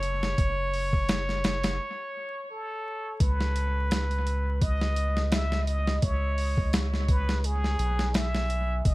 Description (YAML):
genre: trip hop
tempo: 85 BPM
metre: 4/4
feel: swing 55% on 16ths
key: C# minor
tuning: A4 = 440 Hz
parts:
  - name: trumpet with plunger mute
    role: melody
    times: 0.0-8.9 s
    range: G#4 to E5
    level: -31 LUFS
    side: equal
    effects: tape echo
  - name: soft dub sub bass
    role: bass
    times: 0.0-8.9 s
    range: F#1 to C#2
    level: -28 LUFS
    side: equal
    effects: tube saturation
  - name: boom bap sampler-style drum kit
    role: drums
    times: 0.0-8.9 s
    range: hi-hat, kick drum, snare drum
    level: -28 LUFS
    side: equal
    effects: none
room: little or no reverb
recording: echo-heavy mix, vinyl crackle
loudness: -25 LUFS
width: side -19 dB against mid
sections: 0.0-3.2 A section; 3.2-8.9 B section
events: break 1.8-3.2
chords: 0.0 F#m; 3.2 C#7(no3)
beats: | 0.38 1.09 1.79 2.50 | 3.20 3.91 4.62 5.32 | 6.03 6.73 7.44 8.14 | 8.85